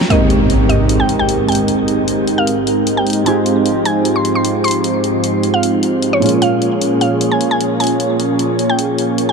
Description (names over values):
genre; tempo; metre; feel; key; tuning
future bass; 152 BPM; 4/4; swing 54% on 16ths, half-time; Ab major; A4 = 440 Hz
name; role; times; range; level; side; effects
airy breathy pad; sustained chords; 0.0-9.3 s; Ab2 to Bb4; -22 LUFS; left 1 dB; chorus
big-room dance drum kit; drums; 0.0-9.3 s; hi-hat, snare drum; -23 LUFS; left 2 dB; none
mallet-like synth pluck; melody; 0.1-9.3 s; Db5 to C6; -20 LUFS; equal; chorus, tape echo
felt-muted upright piano; accompaniment; 0.1-9.3 s; Ab2 to G4; -21 LUFS; right 3 dB; tape echo
soft supersaw; riff; 0.1-9.3 s; Ab3 to Db5; -16 LUFS; right 1 dB; low-pass filter
impact; sound effects; 0.1-1.7 s; none; -18 LUFS; equal; none
room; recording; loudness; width
light reverb; dark, warm production; -12 LUFS; side -5 dB against mid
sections
0.1-9.3 A section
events
band accent 0.0; impact 0.1-1.7; filter sweep on analog synth pad 0.1-9.3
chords
0.1 Abmaj9; 3.3 Fm7/Ab; 6.2 Bbm7